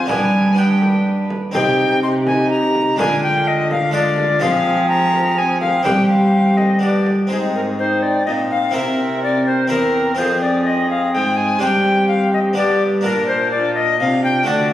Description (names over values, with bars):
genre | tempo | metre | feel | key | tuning
classical, renaissance-style consort dance | 125 BPM | 3/4 | straight | C minor | A4 = 440 Hz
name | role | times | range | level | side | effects
bright alto recorder | melody | 0.0-14.7 s | Ab4 to C6 | -19 LUFS | left 2 dB | none
warm viola | second line | 0.0-14.7 s | Eb4 to B4 | -24 LUFS | right 1 dB | none
clear trombone | accompaniment | 0.0-14.7 s | B3 to Eb4 | -23 LUFS | left 1 dB | none
harpsichord | accompaniment | 0.0-14.7 s | E2 to Bb4 | -23 LUFS | equal | none
dark cello | bass | 0.0-14.7 s | E2 to G3 | -20 LUFS | right 1 dB | none
frame drum | percussion | 0.1-7.3 s | none | -28 LUFS | equal | none
room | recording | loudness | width
moderate recital hall reverb, RT60 1.6 s | recorded on a phone in the room, club reverb, compression | -14 LUFS | side -13 dB against mid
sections
0.0-7.3 A section; 7.3-14.7 B section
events
none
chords
0.1 G; 1.5 Cm; 3.0 Ddim; 4.4 Fm; 5.9 Gsus4; 6.8 G; 7.3 Ab; 8.7 C7; 10.2 Fm; 11.6 Gsus4; 12.6 G; 13.0 Bb